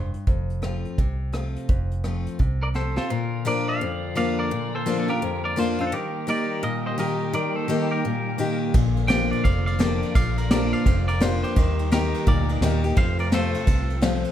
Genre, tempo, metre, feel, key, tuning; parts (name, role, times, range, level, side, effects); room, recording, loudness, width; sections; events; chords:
honky-tonk and classic country; 170 BPM; 4/4; swing 62% on 8ths; Bb major; A4 = 440 Hz
picked steel-string acoustic guitar; accompaniment; 0.0-14.3 s; F2 to G4; -26 LUFS; left 4 dB
vintage muted fingered electric bass; bass; 0.0-3.0, 8.7-14.2 s; F1 to F2; -25 LUFS; right 1 dB
vintage brush drum kit; drums; 0.1-3.0, 8.7-14.3 s; hi-hat, kick drum, ride cymbal, rim click, snare drum; -23 LUFS; equal
twangy electric guitar; melody; 2.6-14.0 s; F4 to G5; -28 LUFS; right 1 dB
warm studio string section; sustained chords; 3.1-14.3 s; C3 to G4; -32 LUFS; right 4 dB
light reverb; -21 LUFS; side -10 dB against mid
0.0-3.1 A section; 3.1-14.3 B section
drum fill 2.8-3.1
0.3 F; 3.1 Bb; 5.9 Eb; 8.7 Bb; 11.6 Eb; 13.0 F